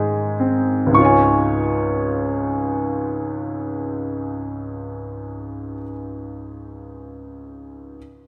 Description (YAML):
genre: classical, lyrical solo piano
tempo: free time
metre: none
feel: none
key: Db major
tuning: A4 = 440 Hz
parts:
  - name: bright grand piano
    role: solo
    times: 0.0-8.0 s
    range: Db2 to Db6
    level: -22 LUFS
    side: equal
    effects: none
room: wet scoring stage reverb, RT60 1.8 s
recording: recorded in a church or concert hall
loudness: -21 LUFS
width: mono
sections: 0.9-5.5 A section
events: none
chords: 0.0 Ab; 0.9 Db